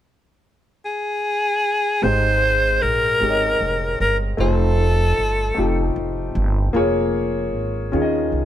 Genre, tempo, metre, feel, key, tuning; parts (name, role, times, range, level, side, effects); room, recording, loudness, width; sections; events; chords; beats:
slow gospel; 51 BPM (dotted quarters); 6/8; straight; Ab major; A4 = 440 Hz
raspy alto saxophone; melody; 0.9-5.9 s; Ab4 to C5; -19 LUFS; left 1 dB
warm upright piano; accompaniment; 2.0-8.4 s; Ab2 to Eb5; -22 LUFS; left 2 dB
upright bass; bass; 2.0-8.4 s; F1 to Eb2; -22 LUFS; right 1 dB
light reverb; -17 LUFS; side -11 dB against mid
0.0-2.0 A section; 2.0-8.4 B section
0.0 N.C.; 2.0 Abmaj7; 4.4 F7; 6.7 Bbm7/F; 7.9 Eb9sus4
0.85 | 2.03 3.21 | 4.39 5.57 | 6.75 7.93